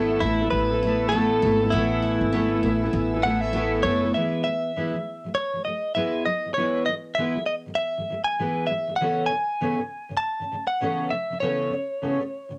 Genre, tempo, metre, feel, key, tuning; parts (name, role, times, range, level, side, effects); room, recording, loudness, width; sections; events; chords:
acoustic pop; 99 BPM; 4/4; swing 60% on 16ths; E major; A4 = 440 Hz
direct-recorded clean electric guitar; melody; 0.0-12.6 s; E4 to A5; -28 LUFS; equal
fingerpicked steel-string acoustic guitar; accompaniment; 0.0-12.6 s; C#3 to C#5; -29 LUFS; equal; double-tracked, cassette tape
tonewheel organ; sustained chords; 0.0-4.1 s; B4 to E6; -37 LUFS; equal; chorus vibrato, lush chorus, cassette tape
picked steel-string acoustic guitar; arpeggios; 0.0-4.7 s; B3 to A4; -32 LUFS; equal; cassette tape
upright bass; bass; 0.0-4.1 s; F#1 to A1; -30 LUFS; equal
light reverb; home recording on cassette; -25 LUFS; mono
0.0-4.1 A section; 4.1-12.6 B section
0.0 Asus2; 4.1 E; 9.0 Aadd9